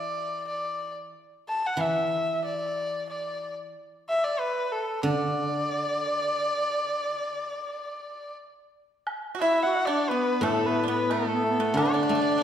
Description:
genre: chinese traditional, Chinese chamber ensemble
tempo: 90 BPM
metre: 4/4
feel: rubato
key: D gong mode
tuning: A4 = 440 Hz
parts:
  - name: warm erhu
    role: melody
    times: 0.0-12.4 s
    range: A4 to A5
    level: -27 LUFS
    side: left 1 dB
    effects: none
  - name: guzheng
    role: accompaniment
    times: 0.0-12.4 s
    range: A2 to A3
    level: -30 LUFS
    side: right 1 dB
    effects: none
  - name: woodblock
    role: percussion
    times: 9.1-11.9 s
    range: none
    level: -38 LUFS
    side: equal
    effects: none
  - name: pipa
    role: second line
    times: 9.3-12.4 s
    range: A3 to F#4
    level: -31 LUFS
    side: right 5 dB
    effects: none
  - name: melodica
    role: second line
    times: 9.4-12.4 s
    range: A3 to F#4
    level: -27 LUFS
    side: left 1 dB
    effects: none
room: wet recital hall reverb, RT60 1.5 s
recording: recorded in a church or concert hall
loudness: -25 LUFS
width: side -9 dB against mid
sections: 0.0-9.1 A section; 9.1-12.4 B section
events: none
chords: none

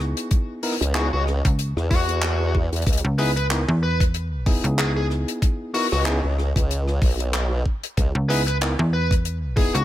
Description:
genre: glitch hop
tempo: 94 BPM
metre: 4/4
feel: swing 56% on 16ths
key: C# dorian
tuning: A4 = 441 Hz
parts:
  - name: bell-like tine electric piano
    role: stabs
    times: 0.0-9.8 s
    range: B3 to A#4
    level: -28 LUFS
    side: equal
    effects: sidechain pumping, ping-pong delay
  - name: slap-like FM bass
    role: bass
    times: 0.0-9.8 s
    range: C#2 to E2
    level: -22 LUFS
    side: equal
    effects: none
  - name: compact cocktail drum kit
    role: drums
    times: 0.0-9.8 s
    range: handclaps, hi-hat, rim click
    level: -28 LUFS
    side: left 2 dB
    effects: none
  - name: electronic kick drum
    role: drums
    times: 0.3-9.7 s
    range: none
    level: -20 LUFS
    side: equal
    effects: none
  - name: formant-sweep wobble bass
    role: bass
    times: 0.8-8.1 s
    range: B1 to E2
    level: -22 LUFS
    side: equal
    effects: chorus, tube saturation
  - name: dark smooth lead guitar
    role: melody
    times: 0.9-9.8 s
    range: F#4 to B4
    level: -28 LUFS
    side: left 1 dB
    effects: overdrive, vintage 12-bit sampler grit, ping-pong delay
room: studio reverb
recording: none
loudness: -19 LUFS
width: side -13 dB against mid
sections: 0.0-9.8 A section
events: none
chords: 0.0 C#m9

